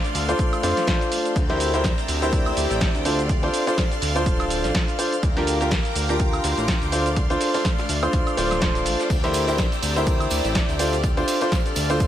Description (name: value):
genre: piano house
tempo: 124 BPM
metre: 4/4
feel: swing 56% on 16ths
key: D minor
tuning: A4 = 438 Hz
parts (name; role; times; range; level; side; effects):
- string machine, violins; sustained chords; 0.0-12.1 s; D5 to G6; -30 LUFS; equal; ensemble chorus, sidechain pumping
- punchy analog drum machine; drums; 0.0-12.1 s; crash cymbal, hi-hat, ride cymbal, shaker, snare drum, woodblock; -28 LUFS; right 1 dB; none
- soft brush drum kit; drums; 0.0-12.1 s; hi-hat, shaker, snare drum; -40 LUFS; left 1 dB; none
- airy breathy pad; texture; 0.0-12.1 s; A3 to D6; -31 LUFS; left 1 dB; chorus, sidechain pumping
- fat analog bass; bass; 0.1-12.1 s; D1 to F2; -26 LUFS; equal; sidechain pumping
- clear grand piano; riff; 0.3-12.1 s; D4 to C5; -24 LUFS; equal; sidechain pumping, ping-pong delay
- electronic kick drum; drums; 0.4-12.1 s; none; -23 LUFS; equal; none
- tambourine; percussion; 9.1-12.1 s; none; -38 LUFS; right 5 dB; none
room: light reverb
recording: none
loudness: -19 LUFS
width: side -11 dB against mid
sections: 0.0-12.1 A section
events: none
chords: 0.0 Dm7; 1.4 C7/D; 3.1 Dm7; 5.2 Bb6/D; 6.9 Dm7; 9.1 C7/D; 10.8 Dm7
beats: 0.39 0.88 | 1.36 1.84 2.33 2.81 | 3.29 3.78 4.26 4.75 | 5.23 5.71 6.20 6.68 | 7.17 7.65 8.13 8.62 | 9.10 9.58 10.07 10.55 | 11.04 11.52 12.00